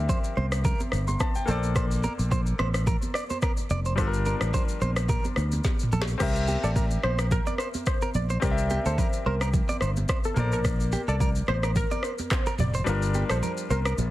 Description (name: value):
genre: afrobeats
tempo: 108 BPM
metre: 4/4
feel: swing 55% on 16ths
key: C mixolydian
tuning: A4 = 445 Hz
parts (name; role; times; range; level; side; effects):
- clear concert grand piano; accompaniment; 0.0-14.1 s; G3 to C6; -33 LUFS; left 4 dB; none
- fingered electric bass; bass; 0.0-14.1 s; F1 to D2; -26 LUFS; equal; none
- direct-recorded clean electric guitar; riff; 0.1-13.9 s; G4 to D5; -34 LUFS; right 3 dB; tape echo
- afro-pop drum kit; drums; 0.1-14.1 s; crash cymbal, handclaps, kick drum, rim click, shaker, snare drum, toms; -27 LUFS; equal; overdrive
- congas; percussion; 0.1-14.1 s; none; -36 LUFS; right 4 dB; none
- glassy wavetable pluck; melody; 6.6-13.9 s; A4 to D5; -34 LUFS; equal; chorus, tape echo
room: little or no reverb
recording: heavily compressed radio sound, multiband compression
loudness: -23 LUFS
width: side -16 dB against mid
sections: 0.0-6.2 A section; 6.2-14.1 B section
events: drum fill 5.6-6.2; kick muted 12.9-14.1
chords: 0.0 C7; 1.5 Bbmaj9; 4.0 Gm7; 6.2 C7; 10.4 Bbmaj9; 12.9 Gm7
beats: 0.09 0.65 1.20 | 1.76 2.31 2.87 3.42 | 3.98 4.54 5.09 5.65 | 6.20 6.76 7.31 7.87 | 8.42 8.98 9.54 10.09 | 10.65 11.20 11.76 12.31 | 12.87 13.42 13.98